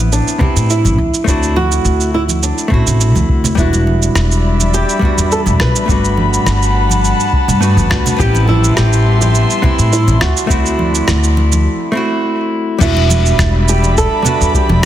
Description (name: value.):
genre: sunset chillout.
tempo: 104 BPM.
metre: 4/4.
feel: swing 53% on 16ths.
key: E minor.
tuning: A4 = 439 Hz.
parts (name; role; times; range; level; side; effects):
hollow-body jazz guitar; accompaniment; 0.0-14.9 s; G3 to G4; -19 LUFS; moving between left 4 dB and right 2 dB; auto-pan, ping-pong delay.
upright bass; bass; 0.0-14.9 s; E1 to A2; -14 LUFS; equal; tube saturation.
flamenco guitar; melody; 0.1-14.8 s; D4 to B4; -19 LUFS; right 2 dB; tape echo.
dusty soul sampler-style drum kit; drums; 0.1-14.7 s; crash cymbal, rim click, shaker; -20 LUFS; right 2 dB; overdrive.
electronic kick drum; drums; 0.4-14.7 s; none; -16 LUFS; equal; none.
congas; percussion; 0.4-14.8 s; none; -23 LUFS; right 3 dB; none.
airy breathy pad; sustained chords; 4.0-14.9 s; G3 to C6; -19 LUFS; left 1 dB; chorus.
room: moderate concert hall reverb, RT60 2.3 s.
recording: dense, heavily limited modern master.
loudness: -10 LUFS.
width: side -12 dB against mid.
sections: 0.0-12.8 A section; 12.8-14.9 B section.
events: break 11.7-12.8.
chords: 0.0 Am7; 1.0 D7; 3.6 Em7; 5.9 Gmaj9; 8.2 Am7; 10.2 D7; 12.8 Em7.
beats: 0.12 0.70 | 1.27 1.85 2.43 3.00 | 3.58 4.16 4.73 5.31 | 5.89 6.46 7.04 7.62 | 8.20 8.77 9.35 9.93 | 10.50 11.08 11.66 12.23 | 12.81 13.39 13.96 14.54.